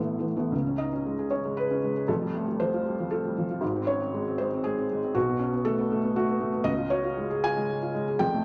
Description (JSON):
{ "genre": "neoclassical minimalist piano", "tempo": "117 BPM", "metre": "3/4", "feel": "rubato", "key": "unclear", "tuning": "A4 = 441 Hz", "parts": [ { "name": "felt-muted upright piano", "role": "solo", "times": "0.0-8.4 s", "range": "F1 to G#5", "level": "-28 LUFS", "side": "equal", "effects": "none" } ], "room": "wet large studio reverb, RT60 1.2 s", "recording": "none", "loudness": "-28 LUFS", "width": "mono", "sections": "0.5-8.4 A section", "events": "none", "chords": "0.0 Asus2; 0.5 C#5; 2.1 Fadd9; 3.6 G#; 5.1 B5; 6.7 C#" }